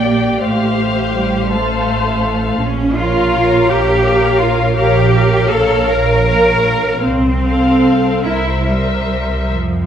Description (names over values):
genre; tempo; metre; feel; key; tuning
classical, slow romantic movement for string orchestra; 46-57 BPM (dotted quarters); 6/8; rubato; F major; A4 = 439 Hz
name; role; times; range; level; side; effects
muted chamber violin section; melody; 0.0-9.5 s; E5 to G5; -22 LUFS; left 5 dB; none
muted symphonic violin section; second line; 0.0-9.5 s; A4 to D5; -22 LUFS; left 3 dB; none
muted symphonic viola section; accompaniment; 0.0-9.5 s; G4 to C5; -21 LUFS; equal; none
muted symphonic cello section; bass; 0.0-9.9 s; F3 to Bb4; -15 LUFS; right 1 dB; none
muted symphonic double bass section; bass; 0.0-9.9 s; A1 to F2; -18 LUFS; right 2 dB; none
room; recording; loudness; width
moderate recital hall reverb, RT60 1.2 s; none; -12 LUFS; side -9 dB against mid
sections
0.0-9.9 A section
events
none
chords
0.4 F/A; 2.6 Bbm; 4.8 Gm7b5/Bb; 7.0 F/C; 8.2 C7